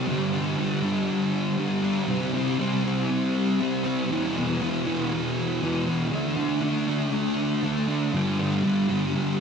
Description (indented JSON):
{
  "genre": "rock",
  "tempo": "119 BPM",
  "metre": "4/4",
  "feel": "straight",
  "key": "unclear",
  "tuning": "A4 = 441 Hz",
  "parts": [
    { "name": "thick fuzz guitar", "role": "solo", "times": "0.0-9.4 s", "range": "E2 to D4", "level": "-23 LUFS", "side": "equal", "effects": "distortion, analog chorus, analog delay" }
  ],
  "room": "wet church reverb, RT60 3.1 s",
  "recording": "dreamy mix soaked in reverb",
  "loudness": "-23 LUFS",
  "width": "side -6 dB against mid",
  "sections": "0.1-9.4 A section",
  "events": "none",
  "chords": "0.1 G5; 2.1 C5; 4.1 E5; 6.1 D5; 8.1 G5",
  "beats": "| 0.07 0.58 1.08 1.59 | 2.09 2.60 3.10 3.60 | 4.11 4.61 5.12 5.62 | 6.12 6.62 7.13 7.63 | 8.13 8.64 9.14"
}